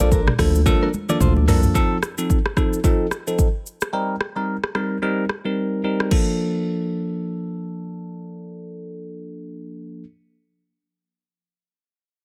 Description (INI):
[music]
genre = afrobeats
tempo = 110 BPM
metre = 4/4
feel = swing 58% on 16ths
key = Bb major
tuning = A4 = 440 Hz
[part]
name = bell-like tine electric piano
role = accompaniment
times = 0.0-10.0 s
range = F3 to Bb4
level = -26 LUFS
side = equal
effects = phaser
[part]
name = direct-recorded clean electric guitar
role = riff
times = 0.0-1.6 s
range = D4 to D5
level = -30 LUFS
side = equal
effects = tape echo
[part]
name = saturated sub bass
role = bass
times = 0.0-1.7 s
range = Bb1 to D2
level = -21 LUFS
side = equal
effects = none
[part]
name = afro-pop drum kit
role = drums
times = 0.0-6.3 s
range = crash cymbal, hi-hat, kick drum, rim click, shaker, toms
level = -23 LUFS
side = equal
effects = none
[part]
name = congas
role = percussion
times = 0.0-1.5 s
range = none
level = -32 LUFS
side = equal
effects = none
[sound]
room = little or no reverb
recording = none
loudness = -21 LUFS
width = mono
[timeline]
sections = 0.0-1.8 A section; 1.8-6.1 B section; 6.1-10.5 C section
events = drum fill 0.7-1.8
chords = 0.0 Bbmaj7; 1.8 F7; 3.9 Eb6; 6.1 Bbmaj7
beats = 0.11 0.66 1.21 | 1.75 2.30 2.84 3.39 | 3.93 4.48 5.02 5.57 | 6.11 6.66 7.21 7.75 | 8.30 8.84 9.39 9.93